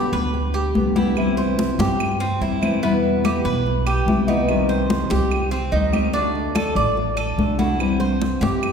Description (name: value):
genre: latin, Cuban son and guajira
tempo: 145 BPM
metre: 4/4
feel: straight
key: unclear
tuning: A4 = 440 Hz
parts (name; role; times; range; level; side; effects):
- nylon-string guitar; accompaniment; 0.0-8.7 s; B2 to G4; -23 LUFS; left 2 dB; none
- Cuban tres; arpeggios; 0.0-8.7 s; B3 to D5; -24 LUFS; right 1 dB; none
- upright bass; bass; 0.0-8.7 s; A1 to G2; -24 LUFS; right 1 dB; none
- congas; percussion; 0.1-8.7 s; none; -24 LUFS; left 1 dB; none
- claves; percussion; 1.2-8.7 s; none; -33 LUFS; right 4 dB; none
room: wet concert hall reverb, RT60 2.4 s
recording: recorded in a church or concert hall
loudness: -18 LUFS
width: side -6 dB against mid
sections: 0.0-8.7 A section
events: none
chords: 0.0 G; 1.2 C; 2.8 Em; 4.5 Cm; 6.1 D; 7.8 C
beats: 0.34 0.75 | 1.17 1.58 2.00 2.41 | 2.83 3.24 3.65 4.07 | 4.48 4.90 5.31 5.73 | 6.14 6.55 6.97 7.38 | 7.80 8.21 8.62